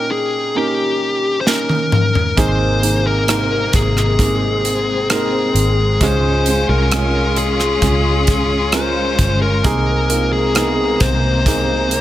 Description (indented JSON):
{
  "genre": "pop ballad",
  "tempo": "66 BPM",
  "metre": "4/4",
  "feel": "straight",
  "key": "Ab major",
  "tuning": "A4 = 441 Hz",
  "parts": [
    { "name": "fuzz lead guitar", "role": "melody", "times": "0.0-12.0 s", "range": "G4 to C5", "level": "-19 LUFS", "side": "left 2 dB", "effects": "distortion" },
    { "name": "warm upright piano", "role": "accompaniment", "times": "0.0-12.0 s", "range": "Ab2 to G5", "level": "-21 LUFS", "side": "right 3 dB", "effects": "none" },
    { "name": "modern studio drum kit", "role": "drums", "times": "1.5-12.0 s", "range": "hi-hat, kick drum, rim click, snare drum, toms", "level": "-19 LUFS", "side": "equal", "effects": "none" },
    { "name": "bright studio string section", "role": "sustained chords", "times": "2.4-12.0 s", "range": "C3 to F4", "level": "-22 LUFS", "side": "left 2 dB", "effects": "none" },
    { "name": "vintage muted fingered electric bass", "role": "bass", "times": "2.4-12.0 s", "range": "G1 to Db2", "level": "-19 LUFS", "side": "equal", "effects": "none" }
  ],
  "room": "studio reverb",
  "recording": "none",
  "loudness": "-13 LUFS",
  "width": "side -13 dB against mid",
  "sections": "0.0-12.0 A section",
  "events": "drum fill 1.5-2.4",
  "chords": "0.0 Eb7; 2.4 Abadd9; 6.0 Db; 9.6 Abadd9/C",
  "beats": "0.55 1.46 | 2.37 3.28 4.19 5.10 | 6.01 6.92 7.82 8.73 | 9.64 10.55 11.46"
}